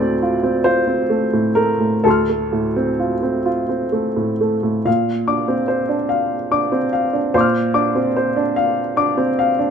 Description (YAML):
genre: neoclassical minimalist piano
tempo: 42-50 BPM (dotted quarters)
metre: 6/8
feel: rubato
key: unclear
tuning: A4 = 438 Hz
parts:
  - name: clear upright piano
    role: solo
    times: 0.0-9.7 s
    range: D2 to F6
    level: -16 LUFS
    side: equal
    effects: none
room: light reverb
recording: close, detailed microphones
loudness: -16 LUFS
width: side -7 dB against mid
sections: 0.0-4.9 A section; 4.9-9.7 B section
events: none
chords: 0.0 Dm7; 4.9 Bbadd9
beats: 0.66 | 2.06 3.47 | 4.87 6.12 | 7.34 8.56